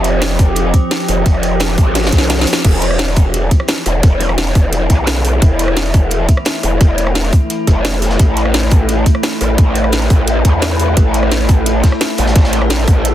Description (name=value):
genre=dark technical drum and bass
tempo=173 BPM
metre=4/4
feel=straight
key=E phrygian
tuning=A4 = 441 Hz
part: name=metallic inharmonic drone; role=sustained chords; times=0.0-13.1 s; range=E3 to B4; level=-20 LUFS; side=left 1 dB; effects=chorus, built-in reverb, sidechain pumping
part: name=growl bass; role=bass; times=0.0-13.1 s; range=E1 to E2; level=-15 LUFS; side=equal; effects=chorus, overdrive, sidechain pumping
part: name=crunchy breakbeat drum kit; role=drums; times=0.0-13.1 s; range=hi-hat, snare drum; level=-28 LUFS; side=equal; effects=none
part: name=drum and bass drum kit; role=drums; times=0.0-13.1 s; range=crash cymbal, hi-hat, rim click, snare drum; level=-19 LUFS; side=equal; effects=overdrive
part: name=electronic kick drum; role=drums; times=0.4-12.9 s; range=none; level=-10 LUFS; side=equal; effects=overdrive
room=little or no reverb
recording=dense, heavily limited modern master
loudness=-11 LUFS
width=side -12 dB against mid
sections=0.0-2.6 A section; 2.6-13.1 A section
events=drop 0.0-2.6, 2.6-13.1; drum fill 2.0-2.6; band accent 2.5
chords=0.0 F; 2.6 E5; 8.2 A5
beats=0.22 0.56 0.91 | 1.26 1.60 1.95 2.30 | 2.65 2.99 3.34 3.69 | 4.03 4.38 4.73 5.07 | 5.42 5.77 6.11 6.46 | 6.81 7.15 7.50 7.85 | 8.19 8.54 8.89 9.23 | 9.58 9.93 10.28 10.62 | 10.97 11.32 11.66 12.01 | 12.36 12.70 13.05